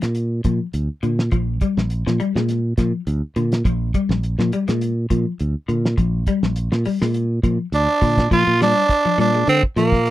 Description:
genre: afrobeat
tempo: 103 BPM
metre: 4/4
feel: swing 54% on 16ths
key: Bb mixolydian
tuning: A4 = 440 Hz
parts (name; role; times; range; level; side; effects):
- clean electric guitar; arpeggios; 0.0-10.0 s; D3 to Ab3; -23 LUFS; left 5 dB; ensemble chorus
- fingered electric bass; bass; 0.0-10.1 s; Bb1 to D3; -20 LUFS; right 1 dB; none
- cloth-damped thuddy drum kit; drums; 0.0-10.1 s; hi-hat, kick drum, snare drum; -21 LUFS; equal; none
- raspy tenor saxophone; melody; 7.7-10.1 s; Bb3 to F4; -17 LUFS; right 3 dB; none
room: little or no reverb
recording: dry, close 1970s-style studio recording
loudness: -17 LUFS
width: side -15 dB against mid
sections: 0.0-8.3 A section; 8.3-10.1 B section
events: none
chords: 0.0 Bb

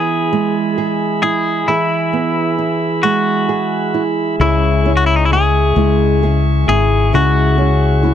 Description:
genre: six-eight pop ballad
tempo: 44 BPM (dotted quarters)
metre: 6/8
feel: straight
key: E major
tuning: A4 = 439 Hz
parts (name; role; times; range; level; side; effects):
- clean electric guitar; melody; 0.0-8.1 s; D#4 to G#4; -18 LUFS; left 2 dB; warbly pitch drift
- nylon-string guitar; accompaniment; 0.0-8.1 s; C#3 to G#4; -19 LUFS; right 8 dB; none
- tonewheel organ; sustained chords; 0.0-8.1 s; G#4 to C#6; -22 LUFS; left 2 dB; stopped rotary speaker
- fingerpicked acoustic archtop guitar; arpeggios; 4.4-8.1 s; C#3 to G#4; -21 LUFS; left 12 dB; none
- fretless electric bass; bass; 4.4-8.1 s; G#1 to C#2; -14 LUFS; left 2 dB; ensemble chorus
room: little or no reverb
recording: dry, close 1970s-style studio recording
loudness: -12 LUFS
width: side -9 dB against mid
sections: 0.0-8.1 A section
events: none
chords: 0.0 E; 4.4 C#m

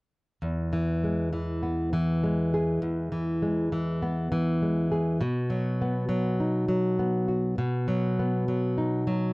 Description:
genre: folk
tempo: 101 BPM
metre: 4/4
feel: straight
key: E major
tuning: A4 = 440 Hz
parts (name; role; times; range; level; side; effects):
- nylon-string guitar; accompaniment; 0.4-9.3 s; E2 to G#4; -25 LUFS; equal; none
room: light reverb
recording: dry, close 1970s-style studio recording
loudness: -25 LUFS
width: side -24 dB against mid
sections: 0.4-9.3 A section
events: none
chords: 0.4 E; 5.2 B

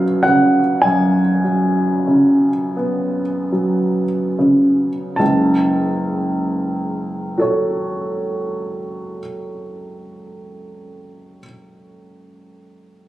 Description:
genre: classical, romantic nocturne for solo piano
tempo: 22-36 BPM (dotted quarters)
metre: 12/8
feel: rubato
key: F# minor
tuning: A4 = 440 Hz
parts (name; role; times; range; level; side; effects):
- clear upright piano; solo; 0.0-13.1 s; F#1 to A5; -16 LUFS; equal; none
room: wet recital hall reverb, RT60 1.5 s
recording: recorded on a phone in the room, club reverb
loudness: -15 LUFS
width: side -15 dB against mid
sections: 0.0-5.2 A section; 5.2-13.1 B section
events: slowing down 0.0-5.2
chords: 0.0 C#7/F#; 5.2 F#m

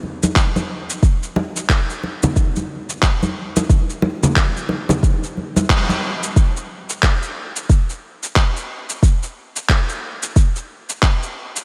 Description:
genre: downtempo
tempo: 90 BPM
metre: 4/4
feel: swing 60% on 16ths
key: none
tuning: none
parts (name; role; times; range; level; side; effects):
- congas; percussion; 0.0-6.0 s; none; -23 LUFS; equal; none
- electronic cabasa and handclaps; drums; 0.2-11.6 s; none; -25 LUFS; equal; overdrive
- electronic kick drum; drums; 0.4-11.2 s; none; -17 LUFS; equal; overdrive
room: moderate lush hall reverb, RT60 2.9 s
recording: dreamy mix soaked in reverb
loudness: -19 LUFS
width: mono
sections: 0.0-6.4 A section; 6.4-11.6 B section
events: band accent 5.7-6.0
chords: none

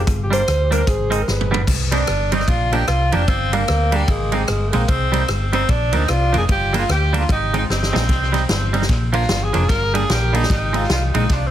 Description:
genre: ska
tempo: 150 BPM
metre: 4/4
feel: swing 61% on 8ths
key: C minor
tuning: A4 = 440 Hz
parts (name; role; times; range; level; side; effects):
- breathy alto saxophone; melody; 0.0-1.7 s; Ab4 to C5; -23 LUFS; equal; tape echo
- hollow-body short-scale fingered electric bass; bass; 0.0-11.5 s; F1 to D2; -20 LUFS; equal; none
- swinging big-band drum kit; drums; 0.1-11.4 s; crash cymbal, hi-hat, kick drum, ride cymbal, rim click, snare drum, toms; -22 LUFS; equal; tape echo
- twangy electric guitar; accompaniment; 0.3-11.2 s; F3 to Eb4; -22 LUFS; right 3 dB; lush chorus
- clear tenor saxophone; melody; 1.9-11.5 s; G3 to Bb4; -21 LUFS; equal; tape echo
room: light reverb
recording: heavily compressed radio sound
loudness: -16 LUFS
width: side -11 dB against mid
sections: 0.0-1.7 A section; 1.7-11.5 A section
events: alto saxophone solo 0.0-1.7; drum fill 1.3-1.7, 7.7-8.1; tenor saxophone solo 1.7-11.5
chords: 0.1 Gm; 0.9 Ab; 1.3 G; 1.7 Cm; 2.5 Bb; 3.3 Gm; 4.1 Ab; 4.9 Cm; 5.7 Bb; 6.5 Gm; 7.3 Ab; 8.1 Cm; 8.9 Bb; 9.7 Gm; 10.5 Ab

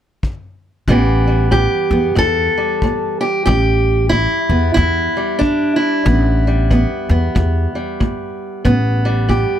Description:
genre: acoustic country blues, solo or duo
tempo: 93 BPM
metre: 4/4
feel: swing 61% on 8ths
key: unclear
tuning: A4 = 440 Hz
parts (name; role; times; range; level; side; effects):
- kick drum; drums; 0.2-9.5 s; none; -22 LUFS; left 1 dB; none
- fingerpicked steel-string acoustic guitar; melody; 0.9-9.6 s; A2 to A4; -16 LUFS; right 1 dB; none
- upright bass; bass; 0.9-9.4 s; A1 to E2; -16 LUFS; equal; none
room: light reverb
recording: none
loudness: -13 LUFS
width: side -10 dB against mid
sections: 0.9-9.6 A section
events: none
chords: 0.0 N.C.; 0.9 Asus2

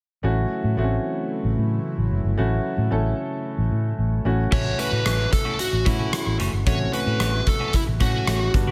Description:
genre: 1980s-style pop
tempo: 112 BPM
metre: 4/4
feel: straight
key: A major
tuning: A4 = 439 Hz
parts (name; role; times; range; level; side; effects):
- warm baby grand piano; accompaniment; 0.2-8.7 s; G3 to A4; -31 LUFS; equal; none
- brassy analog pad; sustained chords; 0.2-4.5 s; C#3 to E4; -33 LUFS; equal; chorus
- vintage muted fingered electric bass; bass; 0.2-8.7 s; F#1 to A2; -25 LUFS; equal; none
- smooth overdriven lead guitar; melody; 4.5-8.5 s; E4 to C#5; -29 LUFS; equal; tape echo
- clean electric guitar; riff; 4.5-8.7 s; E3 to F#4; -34 LUFS; equal; subtle chorus
- big rock drum kit; drums; 4.5-8.7 s; crash cymbal, hi-hat, kick drum, rim click; -26 LUFS; equal; gated reverb
room: light reverb, small room ambience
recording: none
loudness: -23 LUFS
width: mono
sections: 0.2-4.5 A section; 4.5-8.7 B section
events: none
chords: 0.2 A6

